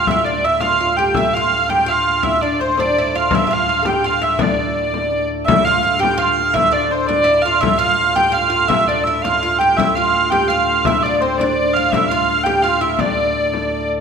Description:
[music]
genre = medieval dance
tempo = 112 BPM (dotted quarters)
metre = 6/8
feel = straight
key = D minor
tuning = A4 = 442 Hz
[part]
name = warm hurdy-gurdy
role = melody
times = 0.0-13.9 s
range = C5 to G5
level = -16 LUFS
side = right 1 dB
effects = none
[part]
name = oud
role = second line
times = 0.0-13.8 s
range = C4 to A4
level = -21 LUFS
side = right 2 dB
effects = none
[part]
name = pipe organ, plenum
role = drone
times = 0.0-14.0 s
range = D2 to A2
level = -26 LUFS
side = left 2 dB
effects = none
[part]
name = frame drum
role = percussion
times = 0.1-14.0 s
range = none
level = -23 LUFS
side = left 6 dB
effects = none
[sound]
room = wet scoring stage reverb, RT60 1.6 s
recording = minimal, uncompressed stereo recording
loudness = -14 LUFS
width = side -6 dB against mid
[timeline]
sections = 0.0-5.5 A section; 5.5-14.0 A section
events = none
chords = none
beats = | 0.07 0.61 | 1.16 1.70 | 2.23 2.77 | 3.31 3.85 | 4.39 4.93 | 5.47 6.01 | 6.55 7.09 | 7.62 8.16 | 8.70 9.24 | 9.78 10.31 | 10.85 11.39 | 11.92 12.46 | 13.00 13.53

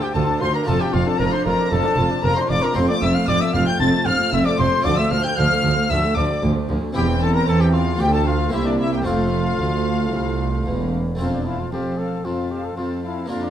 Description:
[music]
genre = classical, baroque-style concerto movement with solo episodes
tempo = 114 BPM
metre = 4/4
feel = straight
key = F major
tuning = A4 = 444 Hz
[part]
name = mellow trumpet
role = melody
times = 0.0-13.5 s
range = C4 to A5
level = -25 LUFS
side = left 2 dB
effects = none
[part]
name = warm studio violin section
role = melody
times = 0.0-13.5 s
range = D5 to A6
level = -29 LUFS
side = left 4 dB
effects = none
[part]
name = warm chamber violin section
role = second line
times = 0.0-13.5 s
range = D5 to A6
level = -27 LUFS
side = left 2 dB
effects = none
[part]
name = dark chamber viola section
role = accompaniment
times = 0.0-13.5 s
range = F3 to F4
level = -26 LUFS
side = right 1 dB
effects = none
[part]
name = harpsichord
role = accompaniment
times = 0.0-13.5 s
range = C2 to G4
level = -27 LUFS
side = left 1 dB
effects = none
[part]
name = rich chamber double bass section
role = bass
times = 0.2-11.2 s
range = E1 to E2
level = -24 LUFS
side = right 3 dB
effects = none
[part]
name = warm chamber cello section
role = bass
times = 0.2-13.5 s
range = C2 to E3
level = -24 LUFS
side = right 1 dB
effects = none
[sound]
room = moderate recital hall reverb, RT60 1.2 s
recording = dark, warm production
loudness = -17 LUFS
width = side -10 dB against mid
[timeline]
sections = 0.0-11.2 A section; 11.2-13.5 B section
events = none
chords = 0.0 Dm; 0.7 Dm/F; 2.8 F; 4.8 Dm; 7.0 C/E; 8.0 Dm; 8.5 C5; 9.1 F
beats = 0.15 | 0.67 1.20 1.72 2.24 | 2.76 3.28 3.80 4.33 | 4.85 5.38 5.90 6.43 | 6.95 7.47 8.00 8.53 | 9.06 9.59 10.13 10.66 | 11.19 11.72 12.25 12.77 | 13.30

